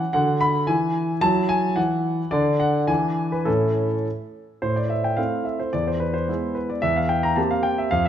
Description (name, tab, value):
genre	classical-period piano sonatina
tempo	109 BPM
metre	2/4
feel	rubato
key	A major, A minor from 4.6 s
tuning	A4 = 441 Hz
part	warm concert grand piano	solo	0.0-8.1 s	E2 to B5	-20 LUFS	equal	none
room	moderate recital hall reverb, RT60 1.3 s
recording	none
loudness	-20 LUFS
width	side -9 dB against mid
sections	0.0-4.6 A section; 4.6-8.1 B section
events	none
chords	0.1 Bm/D; 0.7 N.C.; 1.2 Eadd9; 2.3 N.C.; 2.9 E7; 3.5 A; 4.6 Am; 5.7 E; 6.8 C7/E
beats	| 0.14 0.69 | 1.23 1.77 | 2.33 2.89 | 3.47 4.06 | 4.63 5.18 | 5.74 6.29 | 6.84 7.38 | 7.93